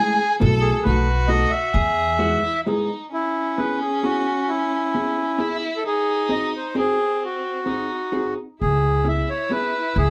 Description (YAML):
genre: musette waltz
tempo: 132 BPM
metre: 3/4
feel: rubato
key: E major, C# minor from 3.1 s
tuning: A4 = 440 Hz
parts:
  - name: accordion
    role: melody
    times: 0.0-10.1 s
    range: E4 to G#5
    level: -25 LUFS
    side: equal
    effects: none
  - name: rich violin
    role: second line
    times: 0.0-10.1 s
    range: B#3 to A4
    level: -29 LUFS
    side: equal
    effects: none
  - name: vintage hollow-body jazz guitar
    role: accompaniment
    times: 0.0-9.7 s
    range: G#3 to A4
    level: -27 LUFS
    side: equal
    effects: none
  - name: upright bass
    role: bass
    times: 0.4-2.3, 8.6-10.1 s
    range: B1 to E2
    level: -23 LUFS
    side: equal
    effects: none
room: wet booth ambience, RT60 0.3 s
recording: heard from further back in the room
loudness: -22 LUFS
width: mono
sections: 0.0-3.1 A section; 3.1-10.1 B section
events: none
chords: 0.4 B7sus4; 0.8 B7; 1.7 Emaj7; 3.1 C#m7; 5.8 G#7; 8.6 C#m7